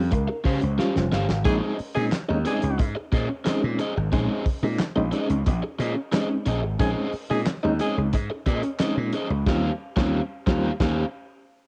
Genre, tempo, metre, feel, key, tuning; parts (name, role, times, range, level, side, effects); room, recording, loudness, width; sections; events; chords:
funk; 90 BPM; 4/4; straight; Bb dorian; A4 = 440 Hz
reed electric piano; stabs; 0.0-10.7 s; G3 to F5; -30 LUFS; equal; fast tremolo, cassette tape
gritty slap bass; bass; 0.0-11.0 s; F1 to Db3; -28 LUFS; equal; overdrive
overdriven electric guitar; accompaniment; 0.1-11.0 s; Db4 to F5; -32 LUFS; equal; spring reverb, cassette tape
warm soul drum kit; drums; 0.1-11.0 s; crash cymbal, handclaps, hi-hat, kick drum, snare drum; -28 LUFS; equal; cassette tape
breathy tenor saxophone; second line; 1.5-8.0 s; Ab4; -31 LUFS; equal; cassette tape
light reverb; home recording on cassette; -24 LUFS; mono
0.0-11.7 A section
reed electric piano fill 0.0-1.5; drum fill 0.8-1.5; band accent 9.5-11.7
0.0 Eb13 (rootless); 1.5 Bbm11; 9.5 Eb13